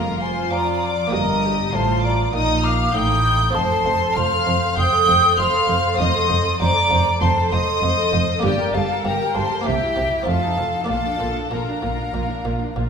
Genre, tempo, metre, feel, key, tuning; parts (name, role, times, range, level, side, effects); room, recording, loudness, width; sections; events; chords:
classical, baroque-style concerto movement with solo episodes; 98 BPM; 4/4; straight; A4 = 441 Hz
mellow hollow concert flute; melody; 0.0-12.9 s; D5 to Eb6; -22 LUFS; equal
warm symphonic violin section; melody; 0.0-12.9 s; G5 to G6; -26 LUFS; left 4 dB
rich studio violin section; second line; 0.0-12.9 s; G4 to G5; -26 LUFS; left 3 dB
buff-stop harpsichord; accompaniment; 0.0-12.9 s; F2 to A4; -29 LUFS; right 1 dB
rich chamber viola section; accompaniment; 0.0-12.9 s; D4 to C5; -26 LUFS; right 1 dB
warm chamber cello section; bass; 0.0-12.8 s; F2 to F3; -26 LUFS; right 2 dB
warm chamber double bass section; bass; 0.0-12.8 s; F1 to F2; -26 LUFS; right 2 dB
wet recital hall reverb, RT60 1.7 s; recorded in a church or concert hall; -17 LUFS; side -6 dB against mid
0.0-12.9 A section
0.0 Bb7/F; 1.1 Eb/G; 3.5 F; 8.4 Gm; 9.7 C7; 10.3 F7; 10.9 Bb